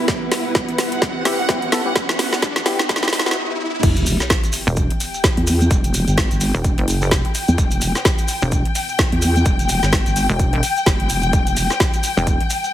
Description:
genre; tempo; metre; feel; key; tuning
bass house; 128 BPM; 4/4; swing 58% on 16ths; E minor; A4 = 441 Hz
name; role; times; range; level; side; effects
deep dark ambient pad; sustained chords; 0.0-12.7 s; B3 to E5; -30 LUFS; right 1 dB; chorus, built-in reverb, sidechain pumping
riser and sub drop; sound effects; 0.0-5.7 s; none; -27 LUFS; equal; none
warm symphonic string section; texture; 0.0-12.7 s; E4 to G5; -25 LUFS; left 2 dB; sidechain pumping
electronic kick drum; drums; 0.1-12.4 s; none; -20 LUFS; equal; studio reverb
garage drum kit; drums; 0.1-12.6 s; crash cymbal, hi-hat, snare drum; -21 LUFS; equal; studio reverb
percussive organ stab; stabs; 1.3-3.4 s; B3 to A4; -25 LUFS; left 2 dB; lush chorus, sidechain pumping, digital delay
vowel-sweep wobble bass; bass; 3.8-11.7 s; E1 to E2; -18 LUFS; equal; chorus, tube saturation, sidechain pumping
maracas; percussion; 3.8-12.7 s; none; -28 LUFS; right 2 dB; none
pulsing pluck wobble bass; bass; 4.7-12.4 s; E1 to F#1; -19 LUFS; equal; chorus, sidechain pumping
room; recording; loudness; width
light reverb, digital ambience; heavily compressed radio sound, multiband compression, high-pass filter; -16 LUFS; side -12 dB against mid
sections
0.0-3.8 A section; 3.8-12.7 B section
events
build-up 0.0-3.8; drum fill 0.0-3.4; riser 0.0-3.8; filter sweep on synth stab 0.0-3.8; stop 3.4-3.8; drop 3.8-12.7; impact 3.8-5.7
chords
0.0 Em

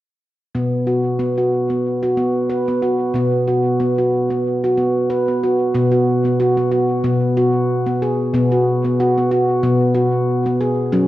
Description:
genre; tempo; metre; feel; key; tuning
world meditative; 92 BPM; 4/4; swing 55% on 16ths; unclear; A4 = 440 Hz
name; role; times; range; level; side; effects
handpan; solo; 0.5-11.1 s; B2 to B4; -15 LUFS; equal; tape echo
room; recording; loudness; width
wet echo chamber reverb, RT60 1.5 s, studio reverb; none; -15 LUFS; side -15 dB against mid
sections
0.6-5.8 A section; 5.8-11.1 B section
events
none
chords
0.6 B5

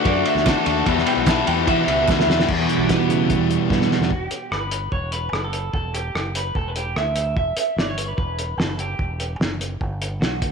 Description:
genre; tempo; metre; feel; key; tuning
indie rock; 147 BPM; 4/4; straight; E dorian; A4 = 440 Hz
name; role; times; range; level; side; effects
electric guitar through a small old amp; melody; 0.0-10.5 s; F#4 to A5; -26 LUFS; right 3 dB; tape echo
overdriven combo organ; sustained chords; 0.0-2.5 s; D5 to C#6; -29 LUFS; right 10 dB; none
overdriven electric guitar; riff; 0.0-4.1 s; E2 to F#4; -21 LUFS; left 14 dB; none
twelve-string electric guitar; riff; 0.0-4.1 s; E2 to F#4; -24 LUFS; right 10 dB; analog chorus
growling fingered electric bass; bass; 0.0-10.5 s; E1 to E3; -27 LUFS; right 1 dB; overdrive
cloth-damped thuddy drum kit; drums; 0.1-10.5 s; crash cymbal, hi-hat, kick drum, ride cymbal, rim click, snare drum; -23 LUFS; equal; none
group handclap; percussion; 0.5-2.2 s; none; -35 LUFS; right 14 dB; none
room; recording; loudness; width
moderate echo chamber reverb, RT60 1.7 s; 1960s-style stereo with parts hard left and right; -19 LUFS; side -5 dB against mid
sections
0.0-2.5 A section; 2.5-4.1 B section; 4.1-10.5 C section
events
clean electric guitar solo 0.0-2.5; drum fill 2.1-2.5, 3.7-4.1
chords
0.0 Dmaj7; 0.9 Emadd9; 4.1 Em

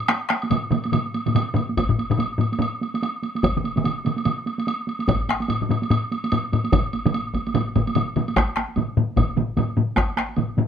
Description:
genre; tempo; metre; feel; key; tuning
japanese traditional, taiko drum ensemble; 146 BPM; 4/4; swing 60% on 16ths; none; none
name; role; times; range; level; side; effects
woodblock; percussion; 0.0-10.5 s; none; -29 LUFS; right 1 dB; none
solo taiko drums; percussion; 0.1-10.7 s; none; -27 LUFS; right 4 dB; none
taiko ensemble; percussion; 0.1-10.7 s; none; -23 LUFS; left 3 dB; none
taiko ensemble; percussion; 0.1-10.7 s; none; -25 LUFS; right 2 dB; none
taiko ensemble; percussion; 1.8-10.1 s; none; -24 LUFS; left 1 dB; none
room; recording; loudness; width
moderate studio reverb, RT60 0.7 s; none; -20 LUFS; side -8 dB against mid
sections
0.0-8.4 A section; 8.4-10.7 B section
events
speeding up 0.0-10.7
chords
none

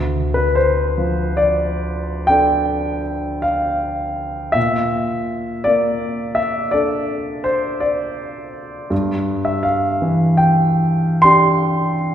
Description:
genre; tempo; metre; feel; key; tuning
classical, impressionist solo piano; 43-57 BPM; 4/4; rubato; D minor; A4 = 438 Hz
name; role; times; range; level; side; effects
warm concert grand piano; solo; 0.0-12.1 s; D2 to C6; -16 LUFS; equal; none
room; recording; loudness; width
wet concert hall reverb, RT60 2.5 s; heard from further back in the room; -16 LUFS; side -10 dB against mid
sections
0.0-12.1 A section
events
none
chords
0.0 Dm; 4.6 Bbmaj7#11; 8.9 G5

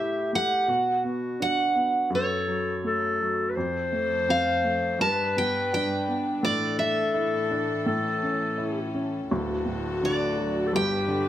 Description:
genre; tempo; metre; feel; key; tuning
acoustic folk-pop ballad; 84 BPM; 4/4; straight; D major; A4 = 440 Hz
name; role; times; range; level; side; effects
picked steel-string acoustic guitar; melody; 0.0-11.3 s; C#5 to A5; -26 LUFS; right 1 dB; none
dark clarinet; second line; 0.0-11.3 s; F#4 to C5; -28 LUFS; left 2 dB; none
warm upright piano; accompaniment; 0.0-11.3 s; D1 to E4; -30 LUFS; right 1 dB; none
warm chamber string section; sustained chords; 3.6-11.3 s; D2 to B4; -34 LUFS; equal; none
room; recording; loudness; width
moderate large studio reverb, RT60 1.1 s; none; -23 LUFS; side -12 dB against mid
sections
0.0-9.3 A section; 9.3-11.3 B section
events
none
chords
0.0 A7(no3); 0.7 Bm; 2.1 F#m; 3.6 F; 5.0 G; 6.4 Asus4; 7.9 A; 9.3 D; 10.7 G

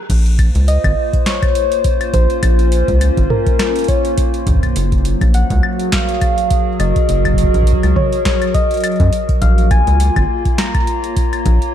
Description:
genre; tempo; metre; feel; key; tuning
IDM; 103 BPM; 4/4; swing 56% on 16ths; Bb minor; A4 = 436 Hz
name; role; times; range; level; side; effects
warbly tape-like pad; sustained chords; 0.5-11.7 s; Gb3 to Db5; -21 LUFS; equal; chorus, built-in reverb
rubbery square bass; bass; 0.1-11.6 s; Gb1 to Gb2; -14 LUFS; equal; none
electro analog drum machine; drums; 0.1-11.7 s; claves, crash cymbal, hi-hat, snare drum, toms; -23 LUFS; equal; none
electronic kick drum; drums; 0.1-11.6 s; none; -17 LUFS; equal; none
soft struck synth lead; melody; 0.7-11.7 s; Bb4 to Bb5; -19 LUFS; left 2 dB; chorus, phaser, ping-pong delay
room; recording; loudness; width
digital ambience; dark, warm production; -12 LUFS; side -10 dB against mid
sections
0.1-11.7 A section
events
band accent 0.0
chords
0.1 Bbmadd9; 4.8 Gbadd9; 9.4 Bbm

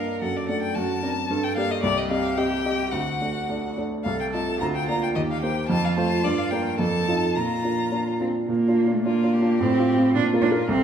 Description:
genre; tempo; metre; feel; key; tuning
quick classical-period movement for piano trio; 109 BPM; 2/4; rubato; Bb major from 4.1 s; A4 = 440 Hz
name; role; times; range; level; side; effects
rich violin; melody; 0.0-10.8 s; F4 to Bb5; -29 LUFS; left 6 dB; none
rich cello; second line; 0.0-10.8 s; A3 to Bb4; -26 LUFS; right 2 dB; none
warm baby grand piano; accompaniment; 0.0-10.8 s; C2 to Eb5; -24 LUFS; right 1 dB; none
room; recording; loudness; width
wet recital hall reverb, RT60 1.5 s; recorded in a church or concert hall; -21 LUFS; side -8 dB against mid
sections
0.0-8.5 A section; 8.5-10.8 B section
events
none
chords
0.2 D/F#; 0.8 D7/F#; 1.3 Gm; 1.8 Cm; 2.9 D; 4.1 F7/C; 4.6 Bb/D; 5.2 Cm7/Eb; 5.7 F; 6.2 Gm; 6.8 F7; 7.4 Bb; 9.6 F/A; 10.1 Bb5

